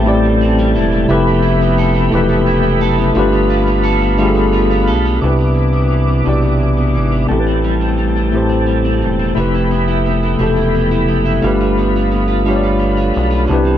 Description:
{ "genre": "R&B", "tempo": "58 BPM (dotted quarters)", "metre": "6/8", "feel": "straight", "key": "unclear", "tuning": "A4 = 440 Hz", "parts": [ { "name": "electric guitar at the edge of break-up", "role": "second line", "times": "0.0-13.8 s", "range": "A2 to A4", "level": "-20 LUFS", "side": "right 4 dB", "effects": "wide subtle chorus" }, { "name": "mellow tine electric piano", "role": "accompaniment", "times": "0.0-13.8 s", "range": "C3 to D5", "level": "-15 LUFS", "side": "left 2 dB", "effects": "fast stereo tremolo" }, { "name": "tonewheel organ", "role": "sustained chords", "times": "0.0-13.5 s", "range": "A4 to D6", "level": "-21 LUFS", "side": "equal", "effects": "chorus vibrato, slow rotary speaker" }, { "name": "rubbery square bass", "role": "bass", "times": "0.0-13.8 s", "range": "E1 to C2", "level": "-17 LUFS", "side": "equal", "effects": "none" } ], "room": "light reverb", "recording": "none", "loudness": "-12 LUFS", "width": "side -10 dB against mid", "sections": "0.0-5.2 A section; 5.2-13.5 B section", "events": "none", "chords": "0.0 Am7; 1.1 Fmaj9#11; 3.2 G9; 5.2 Cmaj9; 7.3 Am7; 9.4 Fmaj9#11; 11.4 G9", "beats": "0.05 | 1.09 2.12 | 3.15 4.19 | 5.22 6.26 | 7.29 8.33 | 9.36 10.40 | 11.43 12.47 | 13.50" }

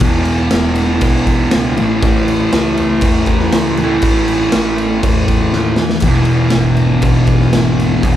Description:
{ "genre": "garage rock duo or trio", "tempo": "120 BPM", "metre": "4/4", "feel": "straight", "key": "E major", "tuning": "A4 = 440 Hz", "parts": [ { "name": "fuzz guitar", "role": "riff", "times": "0.0-8.2 s", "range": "E2 to A3", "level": "-13 LUFS", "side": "equal", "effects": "distortion" }, { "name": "growling picked electric bass", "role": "bass", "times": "0.0-8.2 s", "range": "E1 to E2", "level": "-21 LUFS", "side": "equal", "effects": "overdrive, tube saturation" }, { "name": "raw garage drum kit", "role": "drums", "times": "0.0-8.2 s", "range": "crash cymbal, kick drum, snare drum, splash cymbal", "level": "-16 LUFS", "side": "equal", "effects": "none" } ], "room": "light reverb", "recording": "band playing live in one room", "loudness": "-11 LUFS", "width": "side -11 dB against mid", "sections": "0.0-8.2 A section", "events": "drum fill 5.5-6.0", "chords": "0.0 E5; 1.8 A; 6.0 E", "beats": "| 0.04 0.54 1.04 1.54 | 2.04 2.54 3.04 3.54 | 4.04 4.54 5.04 5.53 | 6.03 6.53 7.03 7.53 | 8.03" }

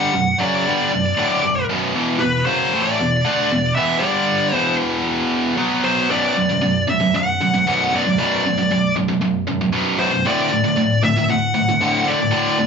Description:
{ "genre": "metal", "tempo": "116 BPM", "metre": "4/4", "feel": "straight", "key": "B phrygian", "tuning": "A4 = 440 Hz", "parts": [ { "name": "high-gain lead guitar", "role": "melody", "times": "0.0-12.7 s", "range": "B4 to F#5", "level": "-19 LUFS", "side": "left 1 dB", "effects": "distortion" }, { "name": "tight distorted guitar", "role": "riff", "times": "0.0-12.7 s", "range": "B1 to D4", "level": "-18 LUFS", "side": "right 1 dB", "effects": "distortion" } ], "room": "moderate large studio reverb, RT60 0.9 s", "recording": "band playing live in one room, nothing above 7.7 kHz", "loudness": "-16 LUFS", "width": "side -6 dB against mid", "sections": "0.0-6.1 A section; 6.1-12.7 B section", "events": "none", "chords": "0.0 Bm; 1.9 E5; 4.0 G5; 4.5 E5; 5.6 B5; 10.3 D", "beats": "0.39 0.91 1.43 | 1.95 2.47 2.99 3.51 | 4.03 4.54 5.06 5.58 | 6.10 6.62 7.14 7.66 | 8.18 8.70 9.22 9.74 | 10.26 10.78 11.29 11.81 | 12.34" }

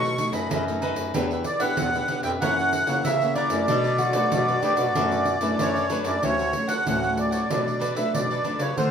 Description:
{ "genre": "samba and choro", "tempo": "94 BPM", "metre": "4/4", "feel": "straight", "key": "B minor", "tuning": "A4 = 442 Hz", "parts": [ { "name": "accordion", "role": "melody", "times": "0.0-8.9 s", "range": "C5 to C#6", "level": "-24 LUFS", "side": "right 1 dB", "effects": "light tremolo tuning" }, { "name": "cavaquinho", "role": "accompaniment", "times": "0.0-8.9 s", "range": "D4 to F#5", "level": "-32 LUFS", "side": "right 1 dB", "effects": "none" }, { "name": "nylon-string guitar", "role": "accompaniment", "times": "0.0-8.9 s", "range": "F#2 to G4", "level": "-30 LUFS", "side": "left 3 dB", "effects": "none" }, { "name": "clear bass clarinet", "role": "bass", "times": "0.0-8.9 s", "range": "D2 to D3", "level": "-28 LUFS", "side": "equal", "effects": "none" }, { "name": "pandeiro", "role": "percussion", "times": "0.0-8.9 s", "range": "none", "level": "-30 LUFS", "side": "right 2 dB", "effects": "none" }, { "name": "growling trombone", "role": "second line", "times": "4.0-6.2 s", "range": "D4 to G4", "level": "-28 LUFS", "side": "left 3 dB", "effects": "none" } ], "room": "moderate small room reverb, RT60 0.5 s", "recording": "minimal, uncompressed stereo recording", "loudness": "-21 LUFS", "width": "side -7 dB against mid", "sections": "0.0-6.2 A section; 6.2-8.9 B section", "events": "none", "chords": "0.0 B7; 1.1 Em7; 2.4 F#7; 3.7 Bm7; 6.2 Dmaj7; 7.5 Bm7", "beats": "0.51 | 1.15 1.78 2.42 3.05 | 3.69 4.32 4.96 5.59 | 6.23 6.86 7.50 8.13 | 8.77" }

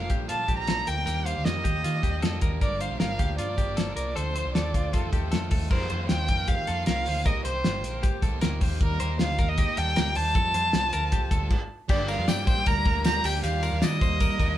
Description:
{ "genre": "jangly indie pop", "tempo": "155 BPM", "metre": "4/4", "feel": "straight", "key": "unclear", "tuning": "A4 = 440 Hz", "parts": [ { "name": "warm violin", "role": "melody", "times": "0.0-14.6 s", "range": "A4 to Bb5", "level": "-29 LUFS", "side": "right 1 dB", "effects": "none" }, { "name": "crunchy overdriven guitar", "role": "accompaniment", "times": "0.0-14.6 s", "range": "F2 to Bb4", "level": "-35 LUFS", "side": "right 4 dB", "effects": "none" }, { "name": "direct-recorded clean electric guitar", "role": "arpeggios", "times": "0.0-14.6 s", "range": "F4 to D5", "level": "-35 LUFS", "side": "left 4 dB", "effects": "none" }, { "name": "vintage muted picked electric bass", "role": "bass", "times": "0.0-14.6 s", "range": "G1 to Eb3", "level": "-30 LUFS", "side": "equal", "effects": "none" }, { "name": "cloth-damped thuddy drum kit", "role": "drums", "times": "0.1-14.5 s", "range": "crash cymbal, hi-hat, kick drum, ride cymbal, snare drum", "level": "-26 LUFS", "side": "equal", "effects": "none" }, { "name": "dark studio violin section", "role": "second line", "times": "11.9-14.6 s", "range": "D4 to Bb4", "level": "-40 LUFS", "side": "equal", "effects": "tape echo" }, { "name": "tambourine", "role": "percussion", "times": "11.9-14.5 s", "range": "none", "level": "-44 LUFS", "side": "left 6 dB", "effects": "none" } ], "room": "moderate studio reverb, RT60 0.5 s", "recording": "band playing live in one room", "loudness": "-23 LUFS", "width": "side -12 dB against mid", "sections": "0.0-5.7 A section; 5.7-11.9 B section; 11.9-14.6 C section", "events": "stop 11.5-11.9", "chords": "0.0 Bbmaj7; 1.1 Ebmaj7; 2.6 Gm7; 4.2 Dm7; 4.9 F7; 5.7 F7sus4; 7.3 Cm7; 8.8 Eb; 10.4 Fadd9; 11.9 Gm; 13.4 Ebmaj7", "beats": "0.30 0.68 | 1.07 1.46 1.84 2.23 | 2.62 3.00 3.39 3.78 | 4.17 4.55 4.94 5.33 | 5.71 6.10 6.49 6.87 | 7.26 7.65 8.03 8.42 | 8.81 9.19 9.58 9.96 | 10.35 10.74 11.12 11.51 | 11.89 12.28 12.66 13.05 | 13.44 13.82 14.20" }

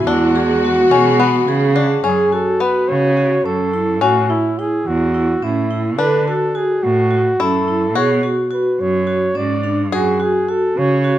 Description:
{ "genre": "contemporary instrumental, chamber music in an uneven meter", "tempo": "213 BPM (eighths)", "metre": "7/8", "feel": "straight", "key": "F# minor", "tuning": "A4 = 442 Hz", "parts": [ { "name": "warm flugelhorn", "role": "melody", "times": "0.0-11.2 s", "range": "E4 to D5", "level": "-20 LUFS", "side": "right 1 dB", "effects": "none" }, { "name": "bluegrass banjo", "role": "second line", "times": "0.0-11.2 s", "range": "B3 to G#4", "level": "-21 LUFS", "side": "left 7 dB", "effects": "none" }, { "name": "rich studio string section", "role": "sustained chords", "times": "0.0-2.0 s", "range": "E3 to F#4", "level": "-24 LUFS", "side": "left 6 dB", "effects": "none" }, { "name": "rich cello", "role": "bass", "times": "0.0-11.2 s", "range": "E2 to D3", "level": "-20 LUFS", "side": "right 2 dB", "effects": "none" }, { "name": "vibraphone with medium mallets", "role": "arpeggios", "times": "0.1-11.2 s", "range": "C#4 to A4", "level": "-18 LUFS", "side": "right 1 dB", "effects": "none" } ], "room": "moderate recital hall reverb, RT60 1.6 s", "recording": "close, detailed microphones", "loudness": "-14 LUFS", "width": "side -12 dB against mid", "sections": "0.0-2.0 A section; 2.0-11.2 B section", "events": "none", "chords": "0.1 E9; 2.0 F#m; 4.0 A; 6.0 D; 8.0 Bm; 9.9 F#madd9", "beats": "| 0.07 0.35 0.63 0.92 1.20 1.48 1.76 | 2.05 2.33 2.61 2.89 3.18 3.46 3.74 | 4.02 4.30 4.59 4.87 5.15 5.43 5.71 | 6.00 6.28 6.56 6.84 7.12 7.40 7.68 | 7.96 8.25 8.53 8.81 9.09 9.37 9.65 | 9.93 10.21 10.49 10.77 11.05" }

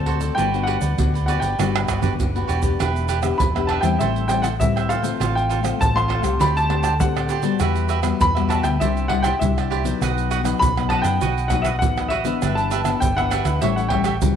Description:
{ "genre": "samba and choro", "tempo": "100 BPM", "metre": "4/4", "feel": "straight", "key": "E minor", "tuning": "A4 = 441 Hz", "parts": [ { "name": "dark baby grand piano", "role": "melody", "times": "0.0-14.4 s", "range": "E5 to C6", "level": "-23 LUFS", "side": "left 1 dB", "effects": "none" }, { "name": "cavaquinho", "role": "accompaniment", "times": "0.0-14.2 s", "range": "D4 to G5", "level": "-27 LUFS", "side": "right 9 dB", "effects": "none" }, { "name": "nylon-string guitar", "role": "accompaniment", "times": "0.0-14.4 s", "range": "F#2 to G4", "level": "-25 LUFS", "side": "left 11 dB", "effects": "none" }, { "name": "hollow-body short-scale fingered electric bass", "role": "bass", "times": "0.0-14.4 s", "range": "E1 to D3", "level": "-23 LUFS", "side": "equal", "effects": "none" }, { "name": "pandeiro, tube shaker, surdo and tamborim", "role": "percussion", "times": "0.1-14.4 s", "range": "none", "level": "-24 LUFS", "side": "right 4 dB", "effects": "none" } ], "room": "moderate echo chamber reverb, RT60 1.9 s, small room ambience", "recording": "1960s-style stereo with parts hard left and right", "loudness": "-18 LUFS", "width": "side -8 dB against mid", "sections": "0.0-2.8 A section; 2.8-14.4 B section", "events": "drum fill 1.6-2.8", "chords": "0.4 Gmaj7; 2.8 Em7; 4.0 Am7; 5.2 F/A; 6.4 D7sus4; 7.6 Emadd9; 8.8 Cadd9; 10.0 B; 12.4 G6; 13.6 A7", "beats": "| 0.38 0.98 1.59 2.19 | 2.79 3.40 4.00 4.60 | 5.20 5.80 6.41 7.01 | 7.61 8.21 8.81 9.41 | 10.01 10.62 11.22 11.82 | 12.42 13.02 13.62 14.22" }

